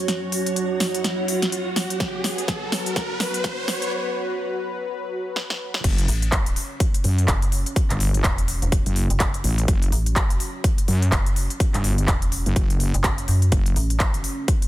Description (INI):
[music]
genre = bass house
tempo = 125 BPM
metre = 4/4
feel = swing 59% on 16ths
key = F# minor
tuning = A4 = 440 Hz
[part]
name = dark analog pad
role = sustained chords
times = 0.0-14.7 s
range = F#3 to C#5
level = -31 LUFS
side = equal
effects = chorus, sidechain pumping
[part]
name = riser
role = sound effects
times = 0.1-3.9 s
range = none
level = -31 LUFS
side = right 2 dB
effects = none
[part]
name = granular cloud pad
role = texture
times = 0.0-3.9 s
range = F#4 to F#5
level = -30 LUFS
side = right 3 dB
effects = built-in reverb, sidechain pumping
[part]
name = big-room dance drum kit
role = drums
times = 0.1-14.7 s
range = crash cymbal, handclaps, hi-hat, snare drum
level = -26 LUFS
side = equal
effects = overdrive, small room reverb
[part]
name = electronic kick drum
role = drums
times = 2.0-14.6 s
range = none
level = -22 LUFS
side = equal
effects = overdrive, small room reverb
[part]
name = wobble bass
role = bass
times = 5.8-13.7 s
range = F#1 to F#2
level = -20 LUFS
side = equal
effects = chorus, overdrive, sidechain pumping
[part]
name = metallic FM bass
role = bass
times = 6.1-14.2 s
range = E1 to F#2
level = -23 LUFS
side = equal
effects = overdrive, sidechain pumping
[sound]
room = little or no reverb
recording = dense, heavily limited modern master, high-pass filter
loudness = -20 LUFS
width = side -15 dB against mid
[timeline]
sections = 0.0-5.8 A section; 5.8-14.7 B section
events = build-up 0.0-5.8; drum fill 0.0-3.9, 5.4-5.8; riser 0.1-3.9; break 3.9-5.8; drop 5.8-14.7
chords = 0.0 F#5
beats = | 0.08 0.56 1.04 1.52 | 2.00 2.48 2.96 3.44 | 3.92 4.40 4.88 5.36 | 5.84 6.32 6.80 7.28 | 7.76 8.24 8.72 9.20 | 9.68 10.16 10.64 11.12 | 11.60 12.08 12.56 13.04 | 13.52 14.00 14.48